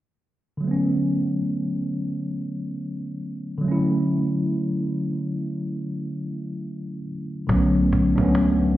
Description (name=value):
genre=lo-fi hip hop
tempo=70 BPM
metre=4/4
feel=swing 61% on 16ths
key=unclear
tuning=A4 = 440 Hz
part: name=mellow tine electric piano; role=accompaniment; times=0.6-8.8 s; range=D3 to E4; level=-22 LUFS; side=equal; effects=medium stereo tremolo, cassette tape, low-pass filter
part: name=soft dub sub bass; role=bass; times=7.5-8.8 s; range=B1 to C#2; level=-24 LUFS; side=equal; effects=none
part: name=cajon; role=drums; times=7.5-8.7 s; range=none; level=-27 LUFS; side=equal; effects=vintage 12-bit sampler grit
room=moderate studio reverb, RT60 0.5 s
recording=heard muffled through a wall, stone room reverb, EQ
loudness=-22 LUFS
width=side -14 dB against mid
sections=0.6-7.5 A section; 7.5-8.8 B section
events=none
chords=0.6 Bm9; 3.6 Dmaj7; 7.5 Bm9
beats=| 0.63 1.49 2.35 3.20 | 4.06 4.92 5.78 6.63 | 7.49 8.35